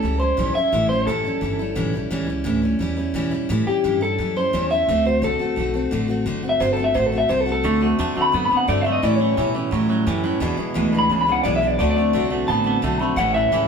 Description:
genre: rock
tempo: 174 BPM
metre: 4/4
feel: straight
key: A mixolydian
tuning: A4 = 440 Hz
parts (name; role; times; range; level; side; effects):
- electric guitar through a small old amp; melody; 0.0-13.7 s; G4 to B5; -20 LUFS; left 2 dB; none
- picked steel-string acoustic guitar; accompaniment; 0.0-13.7 s; E2 to F#4; -25 LUFS; left 1 dB; none
- upright bass; bass; 0.0-13.7 s; F#1 to B2; -24 LUFS; right 1 dB; none
- twangy electric guitar; riff; 7.6-13.7 s; E2 to B3; -25 LUFS; right 4 dB; none
room: moderate large studio reverb, RT60 1.0 s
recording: band playing live in one room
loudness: -18 LUFS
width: side -6 dB against mid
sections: 0.0-13.7 A section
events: clean electric guitar solo 0.0-13.7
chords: 0.0 A7; 4.9 D7; 9.0 A7; 10.4 E7; 11.8 D7; 13.2 A7

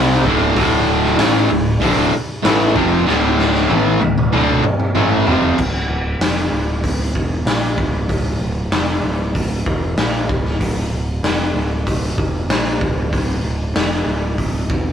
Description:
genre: hard rock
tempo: 96 BPM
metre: 4/4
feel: straight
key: D minor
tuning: A4 = 436 Hz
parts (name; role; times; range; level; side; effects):
- distorted electric guitar; riff; 0.0-5.6 s; D2 to C4; -18 LUFS; left 2 dB; overdrive
- distorted electric guitar; riff; 0.0-5.6 s; D2 to C4; -18 LUFS; right 1 dB; distortion
- growling picked electric bass; bass; 0.0-14.9 s; D1 to C2; -21 LUFS; right 1 dB; overdrive
- raw garage drum kit; drums; 0.3-14.8 s; crash cymbal, hi-hat, kick drum, snare drum, toms; -19 LUFS; equal; none
room: moderate small room reverb, RT60 0.5 s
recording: rough rehearsal-room recording, warm saturation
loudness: -15 LUFS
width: side -8 dB against mid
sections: 0.0-5.6 A section; 5.6-14.9 B section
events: drum fill 3.1-5.6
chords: 0.0 Dm

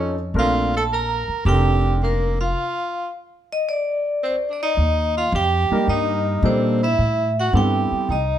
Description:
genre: jazz, small-group swing and bop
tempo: 109 BPM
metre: 4/4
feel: swing 68% on 8ths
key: Bb major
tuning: A4 = 440 Hz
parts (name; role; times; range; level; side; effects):
- vibraphone with medium hard mallets; melody; 0.0-8.4 s; Bb4 to Bb5; -23 LUFS; left 1 dB; none
- bright tenor saxophone; second line; 0.0-8.4 s; Bb3 to Bb4; -26 LUFS; right 3 dB; none
- warm concert grand piano; accompaniment; 0.0-2.3, 5.7-8.1 s; F3 to Bb4; -24 LUFS; right 1 dB; none
- upright bass; bass; 0.0-8.4 s; F1 to Bb2; -21 LUFS; equal; none
room: light reverb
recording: none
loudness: -18 LUFS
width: side -10 dB against mid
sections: 0.0-4.8 A section; 4.8-8.4 B section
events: stop 2.6-4.8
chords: 0.4 Bbmaj9; 4.8 Ebmaj7; 7.0 Am9

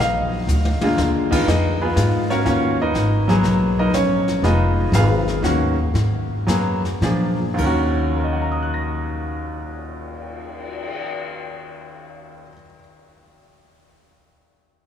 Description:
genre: jazz piano trio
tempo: 104-122 BPM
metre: 3/4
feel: swing 69% on 8ths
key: Eb minor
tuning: A4 = 440 Hz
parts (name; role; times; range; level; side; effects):
- bright baby grand piano; melody; 0.0-12.8 s; Eb2 to Bb6; -20 LUFS; equal; none
- upright bass; bass; 0.0-12.4 s; F1 to Bb2; -21 LUFS; equal; none
- jazz brush drum kit; drums; 0.0-10.9 s; brushed snare drum, crash cymbal, cymbal swell, hi-hat, kick drum, snare drum, toms; -30 LUFS; left 3 dB; none
room: wet cathedral reverb, RT60 5.2 s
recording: recorded in a church or concert hall, small room ambience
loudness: -17 LUFS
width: side -9 dB against mid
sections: 0.0-1.5 A section; 1.5-7.6 B section; 7.6-11.1 C section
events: drum fill 0.5-1.0; slowing down 4.4-7.6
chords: 0.0 Bb7; 1.5 Fm7b5; 2.5 Ebm7; 2.9 Abm9; 3.9 Bbm; 4.4 Fm7b5; 5.4 Ebm7; 5.9 Abm9; 7.0 Bb7; 7.6 Ebm7

